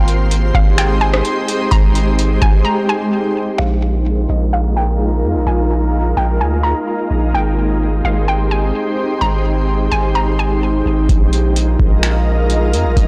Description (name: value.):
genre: hip hop, atmospheric cloud-rap.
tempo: 128 BPM.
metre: 4/4.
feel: half-time.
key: unclear.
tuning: A4 = 442 Hz.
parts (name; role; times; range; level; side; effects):
hollow square pluck; melody; 0.0-10.6 s; Eb5 to Bb5; -24 LUFS; equal; chorus, low-pass filter, delay.
shimmering ambient pad; sustained chords; 0.0-13.1 s; Ab3 to Eb5; -21 LUFS; equal; chorus, built-in reverb, sidechain pumping, low-pass filter.
long sustained 808-style bass; bass; 0.0-13.1 s; Ab1 to F2; -18 LUFS; equal; tube saturation.
booming analog drum machine; drums; 0.1-2.6, 11.1-13.1 s; finger snaps, hi-hat, kick drum, rim click; -17 LUFS; equal; overdrive, soft clipping on snare.
room: light reverb, digital ambience.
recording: blown-out, overdriven recording, overdrive.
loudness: -16 LUFS.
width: mono.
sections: 0.0-3.6 A section; 3.6-11.1 B section; 11.1-13.1 C section.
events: break 2.7-3.6; filter sweep 3.6-11.1.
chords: 0.0 Abmaj7; 3.6 Bb7sus4; 7.3 Abmaj7; 11.1 Bb7sus4.